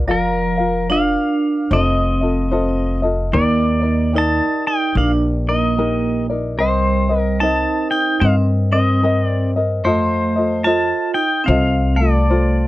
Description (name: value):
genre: Hawaiian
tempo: 74 BPM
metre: 4/4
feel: swing 62% on 8ths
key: unclear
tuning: A4 = 444 Hz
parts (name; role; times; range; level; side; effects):
- tenor ukulele; accompaniment; 0.0-12.7 s; C4 to F5; -22 LUFS; left 2 dB; none
- upright bass; bass; 0.0-12.7 s; F1 to G2; -19 LUFS; equal; none
- pedal steel guitar; melody; 0.1-12.7 s; Bb4 to A5; -21 LUFS; left 1 dB; none
- vibraphone with hard mallets; second line; 0.1-12.7 s; F3 to F4; -20 LUFS; right 3 dB; none
room: light reverb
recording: dry, close 1970s-style studio recording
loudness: -15 LUFS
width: side -16 dB against mid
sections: 0.0-12.7 A section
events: none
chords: 0.1 Bb/F; 1.7 F7; 3.3 Ebmaj7; 6.6 Cm7; 9.8 F7